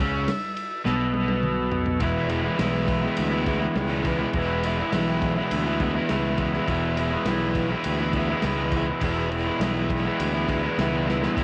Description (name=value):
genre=garage rock duo or trio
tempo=103 BPM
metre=4/4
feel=straight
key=E mixolydian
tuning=A4 = 440 Hz
part: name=combo organ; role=sustained chords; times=0.0-11.4 s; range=E4 to B5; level=-37 LUFS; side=equal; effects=cassette tape
part: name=crunchy overdriven guitar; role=riff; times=0.0-11.4 s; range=E2 to E4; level=-26 LUFS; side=equal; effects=cassette tape
part: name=overdriven picked electric bass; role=bass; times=0.0-11.4 s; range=E1 to D2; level=-31 LUFS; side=equal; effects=none
part: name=vintage drum kit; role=drums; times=0.0-11.4 s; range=kick drum, ride cymbal, snare drum, toms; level=-34 LUFS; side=equal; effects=cassette tape
room=studio ambience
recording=home recording on cassette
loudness=-25 LUFS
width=mono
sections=0.0-2.0 A section; 2.0-11.4 B section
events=drum fill 0.9-2.0, 11.1; transistor combo organ fill 9.6-11.4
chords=0.0 A5; 2.0 E